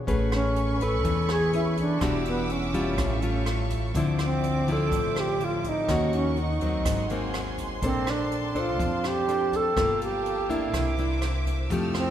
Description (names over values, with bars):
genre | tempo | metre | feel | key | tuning
bossa nova | 124 BPM | 4/4 | straight | unclear | A4 = 440 Hz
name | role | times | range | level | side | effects
nylon-string guitar | accompaniment | 0.0-12.1 s | Ab2 to C5 | -28 LUFS | left 2 dB | none
upright bass | bass | 0.0-12.1 s | E1 to F2 | -31 LUFS | right 1 dB | none
warm symphonic violin section | sustained chords | 0.1-12.1 s | A4 to F6 | -36 LUFS | right 1 dB | none
jazz brush drum kit | drums | 0.1-12.1 s | hi-hat, kick drum, rim click | -34 LUFS | equal | none
reedy alto flute | melody | 0.3-12.1 s | B3 to A4 | -28 LUFS | right 2 dB | none
room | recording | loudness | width
moderate cathedral reverb, RT60 4.8 s | recorded in a church or concert hall | -23 LUFS | side -10 dB against mid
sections
0.0-12.1 A section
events
none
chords
0.1 Amaj9; 2.0 Em9; 3.0 A7b13; 4.0 Dm9; 5.9 Ebm7; 6.9 Ab9; 7.8 Bbmaj9; 9.8 Gm9; 10.7 C9